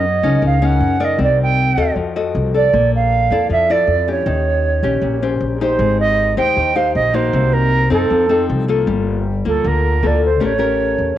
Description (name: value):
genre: bossa nova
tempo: 156 BPM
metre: 4/4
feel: straight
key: Bb minor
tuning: A4 = 440 Hz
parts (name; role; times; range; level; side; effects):
- silver concert flute; melody; 0.0-11.2 s; A4 to G5; -17 LUFS; right 5 dB; cassette tape
- nylon-string guitar; accompaniment; 0.0-11.2 s; Bb2 to Eb5; -19 LUFS; left 6 dB; cassette tape
- upright bass; bass; 0.0-11.2 s; G1 to Gb2; -19 LUFS; equal; none
room: moderate spring reverb, RT60 2.5 s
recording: home recording on cassette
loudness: -14 LUFS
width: side -12 dB against mid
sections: 0.0-8.9 A section; 8.9-11.2 B section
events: flute solo 8.9-11.2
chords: 0.0 Gb6; 1.2 Cm9; 2.0 F7b9; 2.7 Bbmaj7#11; 4.3 Eb6; 5.8 Abmaj7; 7.3 Cm7b5; 8.1 F7; 8.9 Gm9; 10.4 A7b9